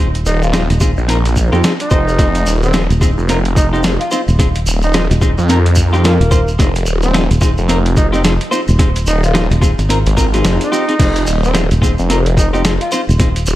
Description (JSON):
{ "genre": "glitch hop", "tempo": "109 BPM", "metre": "4/4", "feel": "swing 59% on 16ths", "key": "F minor", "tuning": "A4 = 437 Hz", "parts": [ { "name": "clean electric guitar", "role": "stabs", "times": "0.0-13.3 s", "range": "C4 to C5", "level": "-19 LUFS", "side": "left 1 dB", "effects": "vintage 12-bit sampler grit, sidechain pumping, dub echo" }, { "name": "fingered electric bass", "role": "bass", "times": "0.0-13.5 s", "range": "Eb1 to Ab1", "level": "-14 LUFS", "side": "equal", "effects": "tube saturation" }, { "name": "boom bap sampler-style drum kit", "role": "drums", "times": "0.1-13.5 s", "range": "crash cymbal, hi-hat, snare drum", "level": "-20 LUFS", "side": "equal", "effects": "none" }, { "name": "shekere", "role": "percussion", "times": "0.1-13.6 s", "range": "none", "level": "-26 LUFS", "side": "right 2 dB", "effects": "none" }, { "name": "mellow tenor saxophone", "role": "melody", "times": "0.3-13.0 s", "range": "Bb3 to F4", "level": "-22 LUFS", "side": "equal", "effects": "dub echo" }, { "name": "phased detuned saw bass", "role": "bass", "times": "0.3-13.6 s", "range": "Eb1 to F2", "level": "-14 LUFS", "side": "equal", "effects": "phaser, tube saturation" }, { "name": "electronic kick drum", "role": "drums", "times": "0.8-13.3 s", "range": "none", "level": "-14 LUFS", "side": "equal", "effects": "none" } ], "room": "little or no reverb", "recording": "echo-heavy mix", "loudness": "-11 LUFS", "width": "side -15 dB against mid", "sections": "0.0-13.6 A section", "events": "kick drops out 10.4-11.0", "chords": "0.0 Fm7", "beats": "0.54 1.09 1.64 | 2.19 2.74 3.29 3.84 | 4.39 4.94 5.49 6.04 | 6.59 7.14 7.69 8.24 | 8.79 9.35 9.90 10.45 | 11.00 11.55 12.10 12.65 | 13.20" }